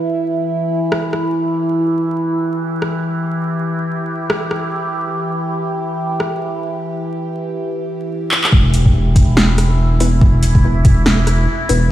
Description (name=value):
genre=deep dubstep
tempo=142 BPM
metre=4/4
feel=swing 59% on 16ths, half-time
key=E minor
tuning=A4 = 440 Hz
part: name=overtone-sweeping drone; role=sustained chords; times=0.0-11.9 s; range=E3 to G4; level=-19 LUFS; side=right 1 dB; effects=chorus, built-in reverb
part: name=deep house drum kit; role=drums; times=0.9-11.8 s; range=handclaps, hi-hat, rim click, snare drum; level=-19 LUFS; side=equal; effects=overdrive
part: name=saturated sub bass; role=bass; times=8.5-11.9 s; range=E1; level=-13 LUFS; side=equal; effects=none
part: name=electronic kick drum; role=drums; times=8.5-10.9 s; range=none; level=-11 LUFS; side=equal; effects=overdrive
part: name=filtered dub chord stab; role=stabs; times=10.0-11.8 s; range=B3 to B4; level=-23 LUFS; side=left 3 dB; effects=phaser, analog chorus, dub echo
room=moderate huge ambient reverb, RT60 5.0 s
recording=played on a big sound system in a bare room, stone room reverb, vinyl crackle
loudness=-14 LUFS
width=side -13 dB against mid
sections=0.0-8.5 A section; 8.5-11.9 B section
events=filter sweep on drum 0.0-8.5; drum fill 8.3; drop 8.5-11.9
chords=0.0 Em; 8.5 E5